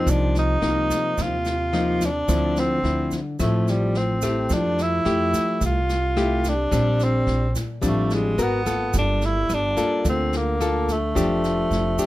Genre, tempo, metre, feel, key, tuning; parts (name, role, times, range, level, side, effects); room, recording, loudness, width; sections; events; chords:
bossa nova; 108 BPM; 4/4; straight; F major; A4 = 441 Hz
breathy tenor saxophone; melody; 0.0-12.1 s; G3 to F4; -24 LUFS; right 1 dB
nylon-string guitar; accompaniment; 0.0-12.1 s; A2 to Bb4; -24 LUFS; left 2 dB
upright bass; bass; 0.0-12.0 s; F1 to F2; -25 LUFS; right 1 dB
jazz brush drum kit; drums; 0.1-12.1 s; kick drum, rim click, snare drum; -31 LUFS; equal
egg shaker; percussion; 0.1-12.1 s; -35 LUFS; right 6 dB
little or no reverb; -20 LUFS; side -16 dB against mid
0.0-12.1 A section
0.1 Cm11; 2.3 Dm9; 4.5 Fmaj9; 6.7 Bb69; 8.4 Abm9; 8.9 Gm9; 11.2 F69